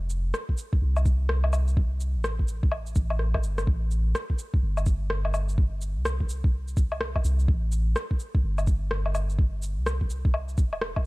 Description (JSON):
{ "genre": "future garage", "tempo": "126 BPM", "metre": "4/4", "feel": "swing 63% on 16ths", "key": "A minor", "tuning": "A4 = 440 Hz", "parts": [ { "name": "soft 808-style bass", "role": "bass", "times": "0.0-11.0 s", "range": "E1 to C2", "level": "-26 LUFS", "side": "equal", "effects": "sidechain pumping" }, { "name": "electronic shaker, rim click and woodblock", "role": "drums", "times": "0.1-11.0 s", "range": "none", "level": "-32 LUFS", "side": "left 1 dB", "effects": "none" }, { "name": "electronic kick drum", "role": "drums", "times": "0.5-11.0 s", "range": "none", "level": "-23 LUFS", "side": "equal", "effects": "none" } ], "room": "little or no reverb", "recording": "none", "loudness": "-24 LUFS", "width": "side -22 dB against mid", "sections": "0.0-11.1 A section", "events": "drum fill 3.2-3.7", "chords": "none" }